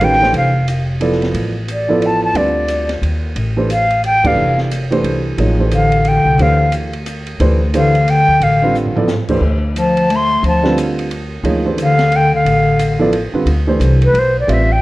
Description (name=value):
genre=modal jazz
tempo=178 BPM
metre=3/4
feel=swing 62% on 8ths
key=D dorian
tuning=A4 = 440 Hz
part: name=silver concert flute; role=melody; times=0.0-14.8 s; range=B4 to C6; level=-15 LUFS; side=equal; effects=plate reverb
part: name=dark grand piano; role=accompaniment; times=0.0-14.7 s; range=D3 to E5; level=-18 LUFS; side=right 2 dB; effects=none
part: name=upright bass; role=bass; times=0.0-14.8 s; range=F1 to A2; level=-18 LUFS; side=equal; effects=none
part: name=open jazz drum kit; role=drums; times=0.0-14.6 s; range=crash cymbal, hi-hat, kick drum, ride cymbal, snare drum, toms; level=-26 LUFS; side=right 1 dB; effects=none
part: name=dark bass clarinet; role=second line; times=5.7-13.1 s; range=D3 to A3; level=-15 LUFS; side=left 2 dB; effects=none
room=moderate large studio reverb, RT60 1.1 s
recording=worn, warbling old tape, cassette tape, warbly pitch drift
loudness=-12 LUFS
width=side -18 dB against mid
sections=0.0-13.5 A section; 13.5-14.8 B section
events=band accent 4.2; drum fill 8.8-9.1; flute solo 13.5-14.8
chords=0.0 Dm7